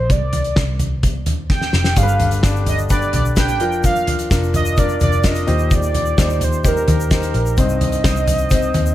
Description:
piano-driven pop; 128 BPM; 4/4; straight; Eb major; A4 = 440 Hz
warm velvety synth lead; melody; 0.0-8.9 s; Bb4 to G5; -22 LUFS; right 3 dB; chorus
vintage muted picked electric bass; bass; 0.0-8.9 s; F1 to Eb2; -20 LUFS; equal
loose indie drum kit; drums; 0.1-8.9 s; hi-hat, kick drum, snare drum, toms; -18 LUFS; equal
warm concert grand piano; accompaniment; 2.0-8.9 s; G2 to D5; -22 LUFS; left 3 dB
egg shaker; percussion; 2.0-8.9 s; -35 LUFS; left 6 dB
small room ambience; -14 LUFS; side -13 dB against mid
0.0-8.9 A section
drum fill 1.5-2.0; grand piano fill 8.7
0.1 Cmadd9; 2.0 G; 3.6 Bb/F; 5.5 Eb6; 7.6 Cm

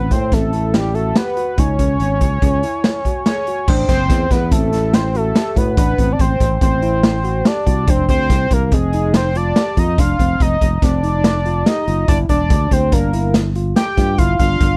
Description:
progressive instrumental, band music in an uneven meter; 143 BPM; 5/4; straight; A4 = 440 Hz
lead with added fifth; melody; 0.0-14.8 s; G4 to G5; -22 LUFS; equal; chorus
bell-like tine electric piano; arpeggios; 0.0-14.8 s; C4 to G#4; -27 LUFS; equal
sustaining fretless electric bass; bass; 0.0-14.8 s; E1 to A2; -21 LUFS; equal
raw garage drum kit; drums; 0.1-14.7 s; crash cymbal, hi-hat, kick drum, snare drum; -19 LUFS; equal
breathy trombone; second line; 11.7-14.8 s; Bb3 to G4; -29 LUFS; equal
little or no reverb; faint mains hum; -16 LUFS; mono
0.0-3.7 A section; 3.7-14.8 B section
0.0 Asus2; 1.6 C#m; 3.7 Am; 7.9 F5; 12.1 Gm

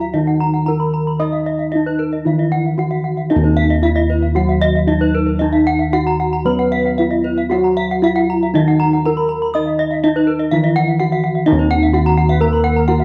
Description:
Balinese gamelan; 114-128 BPM; 4/4; straight; Eb pelog; A4 = 440 Hz
gamelan-type bronze metallophone; melody; 0.0-13.0 s; Eb4 to Eb5; -20 LUFS; equal
gamelan-type bronze metallophone; accompaniment; 0.0-13.0 s; Eb3 to Eb4; -25 LUFS; equal
gamelan-type bronze metallophone; arpeggios; 0.0-13.0 s; Bb4 to Eb6; -26 LUFS; equal
gamelan-type bossed gongs; bass; 0.0-13.0 s; Eb2 to Eb5; -20 LUFS; equal
gamelan-type bronze metallophone; arpeggios; 0.4-13.0 s; Cb5 to Cb6; -25 LUFS; equal
bright reedy bansuri; second line; 12.3-13.0 s; Bb4 to Cb5; -29 LUFS; equal
small room ambience; dry, close 1970s-style studio recording; -16 LUFS; mono
0.0-11.5 A section; 11.5-13.0 B section

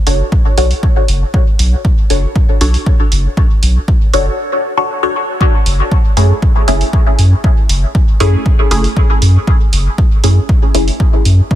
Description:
dub techno; 118 BPM; 4/4; straight; F# minor; A4 = 439 Hz
filtered dub chord stab; stabs; 0.1-10.9 s; A3 to C#5; -17 LUFS; left 1 dB; phaser, sidechain pumping, dub echo
warm sub bass; bass; 0.1-11.4 s; F#1 to F#2; -11 LUFS; equal; sidechain pumping
electronic hi-hat; drums; 0.1-11.4 s; -21 LUFS; right 3 dB
electronic kick drum; drums; 0.3-11.6 s; -12 LUFS; equal
digital ambience; dense, heavily limited modern master; -9 LUFS; side -13 dB against mid
0.0-5.4 A section; 5.4-11.6 A section
filter sweep on synth stab 0.0-5.4, 5.4-11.6; break 4.4-5.4
0.0 Bm7; 5.4 F#m7

